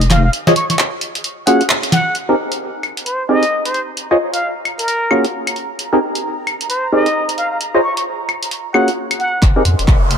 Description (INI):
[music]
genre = UK garage, two-step garage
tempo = 132 BPM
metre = 4/4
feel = swing 61% on 16ths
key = unclear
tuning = A4 = 438 Hz
[part]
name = deep soft wobble bass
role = bass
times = 0.0-0.3, 9.4-10.2 s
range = F1 to F2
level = -14 LUFS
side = equal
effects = chorus
[part]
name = punchy analog drum machine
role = drums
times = 0.0-10.2 s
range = claves, handclaps, hi-hat, snare drum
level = -18 LUFS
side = equal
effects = high-pass filter on hats, high-pass filter on snare, high-pass filter on perc, high-pass filter on room
[part]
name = trumpet with plunger mute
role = melody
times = 0.1-9.4 s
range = Bb4 to Db6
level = -20 LUFS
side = equal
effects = dub echo
[part]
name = percussive organ stab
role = stabs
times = 0.5-9.6 s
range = Bb3 to Eb5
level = -18 LUFS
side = equal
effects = lush chorus
[part]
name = warm analog pad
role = sustained chords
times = 2.2-10.2 s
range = Bb5 to C6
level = -28 LUFS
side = right 3 dB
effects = chorus, sidechain pumping
[part]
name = electronic kick drum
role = drums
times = 9.4-10.0 s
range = none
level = -12 LUFS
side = equal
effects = none
[part]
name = riser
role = sound effects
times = 9.7-10.2 s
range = none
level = -24 LUFS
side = left 2 dB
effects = none
[sound]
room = moderate lush hall reverb, RT60 2.1 s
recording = none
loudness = -14 LUFS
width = side -7 dB against mid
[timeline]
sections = 0.0-2.2 A section; 2.2-9.4 B section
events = filter sweep on synth stab 0.0-2.2; break 0.3-2.2; band accent 1.7; drum fill 9.4-10.2; riser 9.7-10.2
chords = 0.3 Fm7; 1.0 Bbm7; 2.2 Cm7; 4.0 Bbm11; 4.7 Bbm7; 5.8 Cm7; 7.6 Bbm11; 8.3 Bbm7; 9.4 Fm11